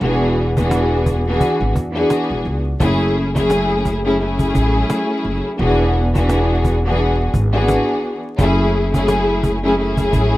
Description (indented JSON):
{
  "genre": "hip hop, boom-bap hip-hop",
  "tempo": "86 BPM",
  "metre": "4/4",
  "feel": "swing 57% on 16ths",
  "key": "F# minor",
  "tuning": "A4 = 437 Hz",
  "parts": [
    { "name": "warm studio string section", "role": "accompaniment", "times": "0.0-10.4 s", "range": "F#2 to G#4", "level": "-17 LUFS", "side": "left 1 dB", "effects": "high-pass filter, low-pass filter, plate reverb" },
    { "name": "upright bass", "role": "bass", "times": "0.0-10.4 s", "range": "E1 to E2", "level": "-19 LUFS", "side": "equal", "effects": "none" },
    { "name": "cajon", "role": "drums", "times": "0.0-10.3 s", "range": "none", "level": "-20 LUFS", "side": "equal", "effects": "none" }
  ],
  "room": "light reverb",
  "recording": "rough home demo mix, vinyl crackle",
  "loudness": "-15 LUFS",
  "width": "side -17 dB against mid",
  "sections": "0.0-10.4 A section",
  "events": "none",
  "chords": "0.0 E7; 2.8 F#m7; 5.6 E7; 8.4 F#m7"
}